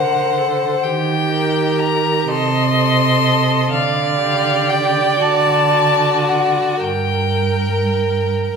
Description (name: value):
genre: classical, slow romantic movement for string quartet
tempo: 36-43 BPM (dotted quarters)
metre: 6/8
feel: rubato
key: G minor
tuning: A4 = 440 Hz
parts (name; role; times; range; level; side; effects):
- clear violin; melody; 0.0-8.5 s; F5 to C6; -19 LUFS; left 6 dB; none
- bright violin; second line; 0.0-8.6 s; F#4 to C5; -22 LUFS; equal; none
- rich viola; accompaniment; 0.0-8.6 s; G4 to Eb5; -20 LUFS; right 4 dB; none
- dark cello; bass; 0.0-8.6 s; G2 to Eb3; -20 LUFS; right 4 dB; none
room: wet recital hall reverb, RT60 1.6 s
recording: minimal, uncompressed stereo recording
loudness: -14 LUFS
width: side -5 dB against mid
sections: 0.0-8.6 A section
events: none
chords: 0.0 D7; 0.8 Eb; 2.3 Adim/C; 3.7 G5/D; 6.8 Gm